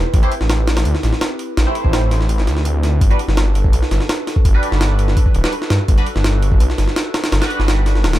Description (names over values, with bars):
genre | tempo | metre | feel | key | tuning
drum and bass, jungle | 167 BPM | 4/4 | straight | unclear | A4 = 440 Hz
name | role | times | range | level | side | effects
warbly tape-like pad | sustained chords | 0.0-8.2 s | C4 to B5 | -26 LUFS | right 1 dB | chorus, built-in reverb
detuned saw bass | bass | 0.0-8.2 s | D1 to G2 | -16 LUFS | equal | none
jungle sampler-style drum kit | drums | 0.1-8.2 s | hi-hat, kick drum, snare drum | -17 LUFS | equal | none
band-passed chord stab | stabs | 0.2-8.2 s | G3 to C5 | -26 LUFS | right 1 dB | phaser, wide subtle chorus, dub echo
swell | sound effects | 8.1-8.2 s | none | -24 LUFS | left 8 dB | none
room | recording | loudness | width
digital ambience | none | -14 LUFS | side -15 dB against mid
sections
0.0-8.2 A section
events
none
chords
0.0 Am7; 3.0 Gmaj7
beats
| 0.14 0.50 0.86 1.22 | 1.57 1.93 2.29 2.65 | 3.01 3.37 3.73 4.09 | 4.45 4.81 5.17 5.53 | 5.89 6.25 6.60 6.96 | 7.32 7.68 8.04